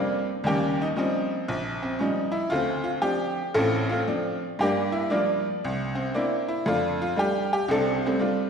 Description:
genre	solo jazz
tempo	116 BPM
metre	4/4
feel	swing 66% on 8ths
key	F major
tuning	A4 = 441 Hz
part	tack piano	solo	0.0-8.5 s	A1 to A4	-23 LUFS	equal	none
room	wet scoring stage reverb, RT60 1.7 s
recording	recorded in a church or concert hall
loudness	-23 LUFS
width	side -6 dB against mid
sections	0.0-8.5 A section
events	none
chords	0.4 Eb9; 2.5 Dm7; 4.6 Gm7; 5.6 C7; 6.7 F69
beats	| 0.43 0.95 1.47 1.99 | 2.51 3.02 3.54 4.06 | 4.58 5.10 5.62 6.13 | 6.65 7.17 7.69 8.21

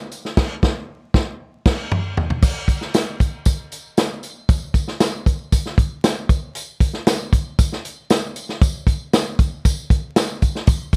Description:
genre	soul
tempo	116 BPM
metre	4/4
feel	straight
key	none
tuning	none
part	natural country drum kit	drums	0.1-11.0 s	crash cymbal, hi-hat, kick drum, snare drum, toms	-19 LUFS	equal	none
part	tambourine	percussion	0.1-11.0 s	none	-36 LUFS	equal	none
room	light reverb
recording	vinyl crackle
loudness	-20 LUFS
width	mono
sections	0.0-2.4 A section; 2.4-11.0 B section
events	drum fill 0.4-2.4; band accent 0.4-2.4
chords	none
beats	| 0.37 0.89 1.40 1.92 | 2.43 2.95 3.46 3.98 | 4.49 5.01 5.52 6.04 | 6.55 7.07 7.58 8.10 | 8.61 9.13 9.65 10.16 | 10.68

